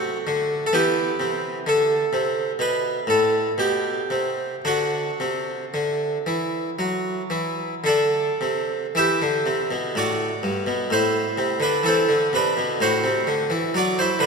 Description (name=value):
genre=classical, baroque-style suite movement for harpsichord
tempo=51-65 BPM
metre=4/4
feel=rubato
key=unclear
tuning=A4 = 440 Hz
part: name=harpsichord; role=solo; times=0.0-14.3 s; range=G2 to E5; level=-20 LUFS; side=equal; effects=none
room=wet church reverb, RT60 3.6 s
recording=none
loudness=-20 LUFS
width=side -4 dB against mid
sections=0.0-9.0 A section; 9.0-14.3 B section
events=none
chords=0.0 D; 0.7 Em; 4.6 D; 9.0 Em; 10.9 Am; 12.8 D7/A